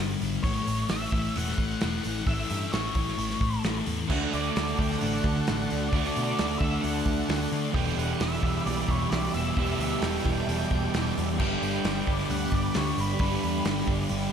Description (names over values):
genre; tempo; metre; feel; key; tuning
rock, shoegaze and dream pop; 132 BPM; 4/4; straight; unclear; A4 = 439 Hz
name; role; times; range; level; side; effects
thick fuzz guitar; riff; 0.0-14.3 s; E2 to D4; -30 LUFS; left 6 dB; distortion, analog chorus
vintage muted picked electric bass; bass; 0.0-14.3 s; E1 to D3; -32 LUFS; equal; none
loose indie drum kit; drums; 0.2-14.2 s; crash cymbal, hi-hat, kick drum, snare drum; -31 LUFS; right 1 dB; none
octave-fuzz lead guitar; melody; 0.4-13.6 s; B4 to G5; -35 LUFS; left 1 dB; distortion, analog delay
lush unison pad; sustained chords; 4.4-14.3 s; F#4 to D6; -37 LUFS; right 2 dB; chorus, phaser
overdriven semi-hollow guitar; riff; 4.1-14.3 s; E2 to G4; -31 LUFS; right 9 dB; reverse reverb
room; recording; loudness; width
wet lush hall reverb, RT60 1.9 s, small room reverb; dreamy mix soaked in reverb; -25 LUFS; side -8 dB against mid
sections
0.0-14.3 A section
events
none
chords
0.4 A; 4.1 D; 7.7 Em7; 11.4 G